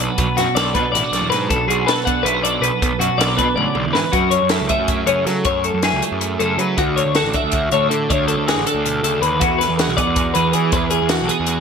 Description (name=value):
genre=math rock and midwest emo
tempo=319 BPM (eighths)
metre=7/8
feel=straight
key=unclear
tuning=A4 = 440 Hz
part: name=twelve-string electric guitar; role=accompaniment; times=0.0-11.6 s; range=A2 to A4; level=-22 LUFS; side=right 9 dB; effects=analog chorus
part: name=twelve-string electric guitar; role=arpeggios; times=0.0-11.6 s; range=F#4 to F#5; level=-19 LUFS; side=left 4 dB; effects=digital delay
part: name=fuzz picked electric bass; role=bass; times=0.0-11.6 s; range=A1 to F#3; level=-23 LUFS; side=equal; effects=overdrive
part: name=compact cocktail drum kit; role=drums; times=0.0-11.6 s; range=hi-hat, kick drum, snare drum, toms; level=-22 LUFS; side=left 1 dB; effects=none
room=moderate plate reverb, RT60 1.4 s, small room ambience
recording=bright 1980s-style digital production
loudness=-15 LUFS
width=side -6 dB against mid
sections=0.0-4.1 A section; 4.1-11.6 B section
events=drum fill 3.6-4.1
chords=0.0 Bm7; 4.1 F#m9; 6.8 Dmaj9; 9.4 E9